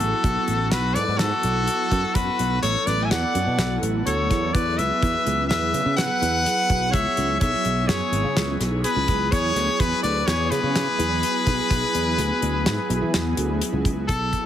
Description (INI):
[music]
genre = progressive instrumental, band music in an uneven meter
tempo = 126 BPM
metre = 5/4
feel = straight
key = unclear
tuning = A4 = 441 Hz
[part]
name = brilliant trumpet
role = melody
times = 0.0-14.5 s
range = A4 to G#5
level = -24 LUFS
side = left 3 dB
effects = tape echo
[part]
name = breathy alto saxophone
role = second line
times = 0.0-13.6 s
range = F#4 to E5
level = -31 LUFS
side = right 6 dB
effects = none
[part]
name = airy breathy pad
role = accompaniment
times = 0.0-14.5 s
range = F#3 to A4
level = -29 LUFS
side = right 1 dB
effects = chorus
[part]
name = sustaining fretless electric bass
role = bass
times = 0.0-14.3 s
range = G#1 to E3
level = -25 LUFS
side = equal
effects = ensemble chorus
[part]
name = damped 70s drum kit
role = drums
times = 0.0-14.4 s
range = hi-hat, kick drum, snare drum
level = -25 LUFS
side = equal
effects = none
[sound]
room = light reverb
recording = heavily compressed radio sound, multiband compression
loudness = -20 LUFS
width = side -10 dB against mid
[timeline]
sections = 0.0-14.1 A section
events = none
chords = 0.0 Bm7; 4.5 E; 6.9 C#m7; 9.3 E7